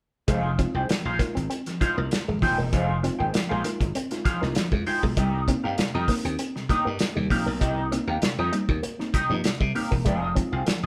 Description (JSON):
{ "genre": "funk", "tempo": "98 BPM", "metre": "4/4", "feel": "straight", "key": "F minor", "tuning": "A4 = 440 Hz", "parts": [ { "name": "clean electric guitar", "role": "accompaniment", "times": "0.3-10.9 s", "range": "C4 to G5", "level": "-31 LUFS", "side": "equal", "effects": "wah" }, { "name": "electric guitar with an envelope filter", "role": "riff", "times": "0.3-10.7 s", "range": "F3 to C4", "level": "-34 LUFS", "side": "equal", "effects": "none" }, { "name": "mellow tine electric piano", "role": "stabs", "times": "0.3-10.8 s", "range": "C3 to F4", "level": "-35 LUFS", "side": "equal", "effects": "none" }, { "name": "slap bass", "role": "bass", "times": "0.3-10.9 s", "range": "Eb1 to C3", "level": "-31 LUFS", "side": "equal", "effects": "none" }, { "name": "cloth-damped thuddy drum kit", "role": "drums", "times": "0.3-10.8 s", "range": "hi-hat, kick drum, snare drum", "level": "-29 LUFS", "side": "equal", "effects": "none" } ], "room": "moderate stone room reverb, RT60 0.9 s", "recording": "band playing live in one room", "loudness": "-25 LUFS", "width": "mono", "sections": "0.3-10.9 A section", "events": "none", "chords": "0.3 Fm7; 5.2 Cm7; 10.1 Fm7" }